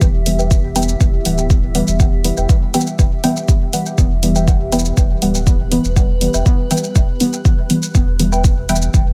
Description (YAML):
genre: dub techno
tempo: 121 BPM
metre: 4/4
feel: straight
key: E minor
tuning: A4 = 440 Hz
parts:
  - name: granular cloud pad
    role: sustained chords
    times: 0.0-9.1 s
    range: B3 to E5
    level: -29 LUFS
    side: equal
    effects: built-in reverb, sidechain pumping
  - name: deep mellow chord stab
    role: stabs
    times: 0.0-9.1 s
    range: E3 to B3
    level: -22 LUFS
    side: equal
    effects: chorus, phaser, dub echo
  - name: soft dub sub bass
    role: bass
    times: 0.0-9.1 s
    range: D1 to E1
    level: -22 LUFS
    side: equal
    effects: tube saturation, sidechain pumping
  - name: electronic kick drum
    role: drums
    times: 0.0-9.0 s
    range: none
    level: -16 LUFS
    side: equal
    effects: none
  - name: electronic shaker and hi-hat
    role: drums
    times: 0.0-9.0 s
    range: none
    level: -26 LUFS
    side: equal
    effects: none
  - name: filtered dub chord stab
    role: riff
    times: 0.4-8.8 s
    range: B4 to G5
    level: -28 LUFS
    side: equal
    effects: phaser, analog chorus, sidechain pumping, dub echo
room: little or no reverb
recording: none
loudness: -15 LUFS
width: mono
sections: 0.0-9.1 A section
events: filter sweep on synth stab 0.0-9.1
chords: 0.0 Em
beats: | 0.01 0.51 1.00 1.50 | 2.00 2.49 2.99 3.48 | 3.98 4.48 4.97 5.47 | 5.96 6.46 6.96 7.45 | 7.95 8.44 8.94